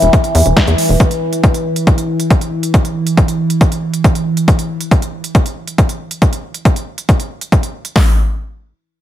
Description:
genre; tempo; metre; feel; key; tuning
psychedelic trance; 138 BPM; 4/4; straight; unclear; A4 = 437 Hz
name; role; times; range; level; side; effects
overtone-sweeping drone; sustained chords; 0.0-4.5 s; E3; -17 LUFS; right 1 dB; chorus, built-in reverb, sidechain pumping
tight sequencer bass; bass; 0.0-1.0 s; E1 to E2; -12 LUFS; equal; none
big-room dance drum kit; drums; 0.0-7.9 s; hi-hat, snare drum; -22 LUFS; right 2 dB; overdrive
big-room dance drum kit; drums; 0.1-8.1 s; hi-hat, kick drum, snare drum; -11 LUFS; equal; overdrive
room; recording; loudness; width
little or no reverb; none; -12 LUFS; side -12 dB against mid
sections
0.0-8.0 A section; 8.0-9.0 B section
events
none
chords
0.0 E5; 8.0 N.C.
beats
0.13 0.57 | 1.00 1.44 1.87 2.31 | 2.74 3.17 3.61 4.04 | 4.48 4.91 5.35 5.78 | 6.22 6.65 7.09 7.52 | 7.96

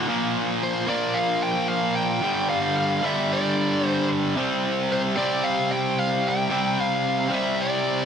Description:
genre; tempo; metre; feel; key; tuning
metal; 112 BPM; 4/4; straight; unclear; A4 = 440 Hz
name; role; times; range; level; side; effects
high-gain distorted guitar; riff; 0.0-8.1 s; G2 to C4; -22 LUFS; equal; distortion
high-gain lead guitar; melody; 0.6-8.1 s; C5 to G5; -26 LUFS; equal; distortion
room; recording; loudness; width
moderate studio reverb, RT60 0.5 s; none; -21 LUFS; side -7 dB against mid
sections
0.1-8.1 A section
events
half time 0.1-8.1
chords
0.1 Bb5; 2.2 G5; 4.4 C5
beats
| 0.09 0.63 1.16 1.70 | 2.23 2.77 3.30 3.83 | 4.37 4.90 5.44 5.97 | 6.51 7.04 7.58

